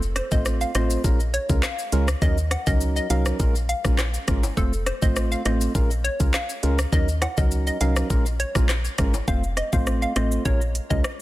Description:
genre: dancehall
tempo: 102 BPM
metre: 4/4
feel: straight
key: Bb minor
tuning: A4 = 440 Hz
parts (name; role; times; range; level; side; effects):
- woody FM bass; bass; 0.0-11.0 s; F1 to Eb2; -24 LUFS; equal; none
- island pop drum kit; drums; 0.0-11.2 s; handclaps, hi-hat, kick drum, rim click, shaker; -24 LUFS; equal; overdrive
- maracas and timbales; percussion; 0.0-9.3 s; none; -37 LUFS; left 6 dB; none
- hollow square pluck; melody; 0.2-11.0 s; A4 to Gb5; -30 LUFS; equal; chorus, digital delay
- percussive organ stab; accompaniment; 0.3-11.0 s; Gb3 to C5; -28 LUFS; right 2 dB; chorus
room: digital ambience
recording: dense, heavily limited modern master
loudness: -20 LUFS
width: side -16 dB against mid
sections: 0.0-9.3 A section; 9.3-11.2 B section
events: none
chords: 0.0 F; 1.0 Bbm7; 2.2 Ebm7; 3.4 Bbm7; 4.6 F; 5.7 Bbm7; 6.9 Ebm7; 8.1 Bbm7; 9.3 F; 10.5 Bbm7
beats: 0.46 1.04 1.63 | 2.22 2.81 3.40 3.98 | 4.57 5.16 5.75 6.34 | 6.93 7.51 8.10 8.69 | 9.28 9.87 10.46 11.04

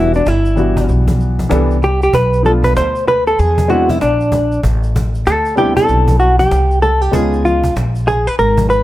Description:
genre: hip hop, jazz-hop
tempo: 96 BPM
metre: 4/4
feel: swing 62% on 16ths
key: unclear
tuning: A4 = 440 Hz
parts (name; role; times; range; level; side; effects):
- hollow-body jazz guitar; melody; 0.0-8.8 s; D4 to C5; -14 LUFS; equal; none
- warm upright piano; accompaniment; 0.0-7.6 s; E3 to A4; -19 LUFS; left 1 dB; none
- upright bass; bass; 0.0-8.8 s; E1 to E2; -15 LUFS; equal; none
- tube shaker and congas; percussion; 0.1-8.8 s; none; -27 LUFS; left 2 dB; none
- cajon; drums; 0.3-8.8 s; none; -22 LUFS; equal; none
room: small room ambience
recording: none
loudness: -11 LUFS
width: side -15 dB against mid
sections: 0.0-8.8 A section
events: hollow-body jazz guitar solo 0.0-8.8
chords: 0.0 Em7; 2.1 Bm7b5; 3.4 E7b13; 4.6 Am11; 7.1 C#9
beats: 0.26 0.88 1.51 | 2.13 2.76 3.38 4.01 | 4.63 5.26 5.88 6.51 | 7.13 7.76 8.38

